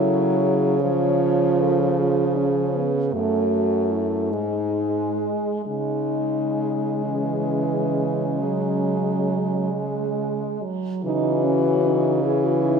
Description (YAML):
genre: classical, lyrical piece for horn quartet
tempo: 43-54 BPM (dotted quarters)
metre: 12/8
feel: rubato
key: C# minor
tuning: A4 = 442 Hz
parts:
  - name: mellow French horn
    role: melody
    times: 0.0-12.8 s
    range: C#4 to C#5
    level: -26 LUFS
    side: left 7 dB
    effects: none
  - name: mellow French horn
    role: second line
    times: 0.0-12.8 s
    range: E3 to E#4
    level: -25 LUFS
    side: right 6 dB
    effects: none
  - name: warm French horn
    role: accompaniment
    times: 0.0-12.8 s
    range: E3 to A3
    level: -25 LUFS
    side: left 3 dB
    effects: none
  - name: clear French horn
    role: bass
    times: 0.0-12.8 s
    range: F#2 to C#3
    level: -26 LUFS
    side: right 4 dB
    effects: none
room: moderate concert hall reverb, RT60 2.3 s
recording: minimal, uncompressed stereo recording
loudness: -20 LUFS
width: side -6 dB against mid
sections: 0.0-11.0 A section; 11.0-12.8 A section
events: none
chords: 0.0 C#m; 0.8 C#; 3.1 F#m; 4.3 G#5; 5.7 C#m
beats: | 0.83 2.00 3.14 4.33 | 5.67 7.03 8.39 9.71 | 11.04 12.23